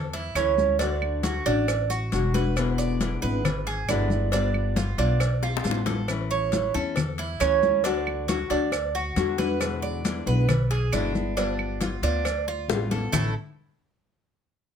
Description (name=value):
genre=latin, Cuban son and guajira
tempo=136 BPM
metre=4/4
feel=straight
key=A major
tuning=A4 = 441 Hz
part: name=Cuban tres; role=arpeggios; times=0.0-13.3 s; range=A3 to D5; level=-27 LUFS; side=right 7 dB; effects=none
part: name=upright bass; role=bass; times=0.0-13.3 s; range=E1 to E2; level=-28 LUFS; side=equal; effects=none
part: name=congas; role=percussion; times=0.1-13.2 s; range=none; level=-30 LUFS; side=left 3 dB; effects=none
part: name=cowbell and bongos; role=percussion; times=0.1-13.2 s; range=none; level=-34 LUFS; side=left 6 dB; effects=none
part: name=nylon-string guitar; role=accompaniment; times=0.4-13.3 s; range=A2 to F#4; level=-29 LUFS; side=left 8 dB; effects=none
part: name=claves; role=percussion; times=0.4-13.2 s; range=none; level=-34 LUFS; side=right 6 dB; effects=none
part: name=maracas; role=percussion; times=0.4-13.2 s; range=none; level=-39 LUFS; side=right 6 dB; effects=none
room=little or no reverb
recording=close, detailed microphones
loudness=-22 LUFS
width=side -7 dB against mid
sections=0.0-6.1 A section; 6.1-13.1 B section; 13.1-14.8 C section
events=drum fill 5.4-6.1, 12.7-13.1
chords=0.0 A; 0.8 D; 2.6 E7; 4.3 G7; 6.1 A; 7.8 D; 9.6 E7; 11.4 G7; 13.1 A5